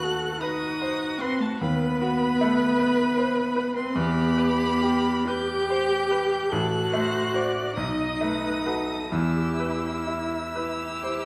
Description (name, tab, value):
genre	classical, slow romantic movement for piano quartet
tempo	41-53 BPM (dotted quarters)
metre	12/8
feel	rubato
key	E minor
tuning	A4 = 440 Hz
part	rich violin	melody	0.0-11.2 s	A5 to G6	-34 LUFS	equal	none
part	warm cello	second line	0.0-11.2 s	A3 to G4	-29 LUFS	equal	none
part	bright grand piano	accompaniment	0.0-11.2 s	A1 to C5	-31 LUFS	equal	none
part	rich viola	accompaniment	0.0-11.2 s	F#4 to D#5	-34 LUFS	equal	none
room	moderate recital hall reverb, RT60 1.6 s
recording	small room ambience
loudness	-25 LUFS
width	mono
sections	0.0-11.2 A section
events	none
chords	0.0 B7/D#; 4.0 Em; 6.5 F#dim/A; 7.8 B7; 9.1 Em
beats	0.42 1.61 2.80 | 3.96 5.27 6.52 7.77 | 9.13 10.56